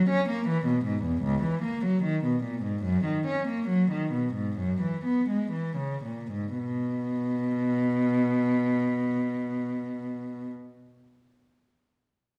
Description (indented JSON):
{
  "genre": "classical, baroque-style suite movement for unaccompanied cello",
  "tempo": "55-79 BPM",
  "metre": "4/4",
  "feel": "rubato",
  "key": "unclear",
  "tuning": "A4 = 441 Hz",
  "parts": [
    { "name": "warm cello", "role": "solo", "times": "0.0-10.5 s", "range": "C#2 to C#4", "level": "-28 LUFS", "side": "equal", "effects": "none" }
  ],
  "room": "wet recital hall reverb, RT60 1.5 s",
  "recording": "none",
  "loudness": "-28 LUFS",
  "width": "mono",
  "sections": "0.0-6.6 A section; 6.6-10.5 B section",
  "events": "slowing down 0.0-6.6",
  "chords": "none"
}